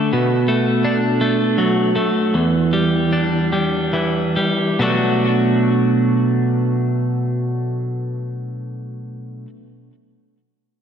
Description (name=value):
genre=rock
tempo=44-56 BPM (dotted quarters)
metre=6/8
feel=straight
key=B minor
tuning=A4 = 440 Hz
part: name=twelve-string electric guitar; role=arpeggios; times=0.0-9.5 s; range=E2 to F#4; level=-16 LUFS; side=right 1 dB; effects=digital delay
room=wet lush hall reverb, RT60 1.9 s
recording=big arena sound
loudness=-16 LUFS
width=side -8 dB against mid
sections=0.0-4.8 A section; 4.8-10.2 B section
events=slowing down 0.1-4.8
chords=0.1 Bm7; 2.3 Em7; 4.8 Bm7